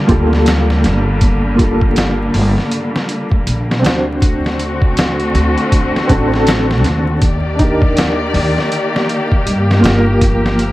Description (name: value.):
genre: trip hop.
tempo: 80 BPM.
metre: 4/4.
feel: swing 60% on 16ths.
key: G minor.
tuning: A4 = 440 Hz.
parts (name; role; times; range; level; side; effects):
felt-muted upright piano; accompaniment; 0.0-10.7 s; Bb3 to C5; -18 LUFS; equal; tremolo, tape echo.
warm studio string section; sustained chords; 0.0-10.7 s; D3 to D5; -18 LUFS; left 1 dB; none.
upright bass; bass; 0.1-10.7 s; G1 to G2; -16 LUFS; equal; tube saturation.
trip hop sampler-style drum kit; drums; 0.1-10.7 s; hi-hat, kick drum, snare drum; -16 LUFS; equal; none.
room: light reverb, small room reverb.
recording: vinyl crackle.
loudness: -11 LUFS.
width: side -17 dB against mid.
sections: 0.0-10.7 A section.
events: none.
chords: 0.0 Gm9; 4.2 D7; 7.2 Ebmaj7; 10.2 Gm7.